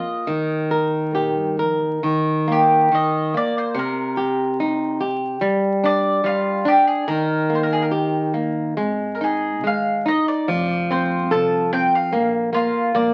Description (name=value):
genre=fado-style ballad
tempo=67-74 BPM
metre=2/4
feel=rubato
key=Eb major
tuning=A4 = 440 Hz
part: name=mandolin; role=melody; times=0.0-13.1 s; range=F4 to A5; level=-23 LUFS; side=equal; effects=none
part: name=flamenco guitar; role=accompaniment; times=0.0-13.1 s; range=C3 to Bb4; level=-22 LUFS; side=equal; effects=none
part: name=upright bass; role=bass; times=0.3-2.0, 8.8-13.1 s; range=F1 to Bb2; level=-36 LUFS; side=equal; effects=none
room=moderate studio reverb, RT60 0.8 s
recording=very old 78 rpm record, vinyl crackle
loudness=-20 LUFS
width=mono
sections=0.0-2.0 A section; 2.0-13.1 A section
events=none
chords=0.3 Eb; 2.0 Eb5; 3.8 Cm7; 5.4 G5; 7.1 Eb; 8.8 Ab5; 10.5 F; 12.1 Bb5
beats=| 0.27 1.14 | 2.02 2.91 | 3.77 4.60 | 5.42 6.23 | 7.06 7.90 | 8.77 9.63 | 10.48 11.31 | 12.13 12.95